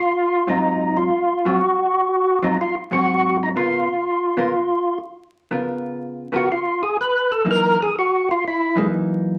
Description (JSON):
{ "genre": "jazz", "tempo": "123 BPM", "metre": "4/4", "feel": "swing 68% on 8ths", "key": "Db mixolydian", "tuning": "A4 = 441 Hz", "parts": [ { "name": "percussive tonewheel organ", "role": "melody", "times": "0.0-8.9 s", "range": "Ab3 to Cb5", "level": "-21 LUFS", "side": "equal", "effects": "slow rotary speaker, overdrive, chorus vibrato" }, { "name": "vintage hollow-body jazz guitar", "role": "accompaniment", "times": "0.5-9.4 s", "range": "Gb2 to Bb4", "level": "-25 LUFS", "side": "equal", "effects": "none" } ], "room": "wet studio reverb, RT60 0.7 s", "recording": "vinyl crackle", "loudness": "-20 LUFS", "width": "mono", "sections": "0.0-5.5 A section; 5.5-9.4 B section", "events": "tonewheel organ solo 5.5-9.4", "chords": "0.0 Ab6; 3.5 Db6; 7.5 Gb6", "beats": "0.13 0.62 1.11 | 1.60 2.08 2.57 3.06 | 3.55 4.04 4.53 5.01 | 5.50 5.99 6.48 6.97 | 7.46 7.94 8.43 8.92" }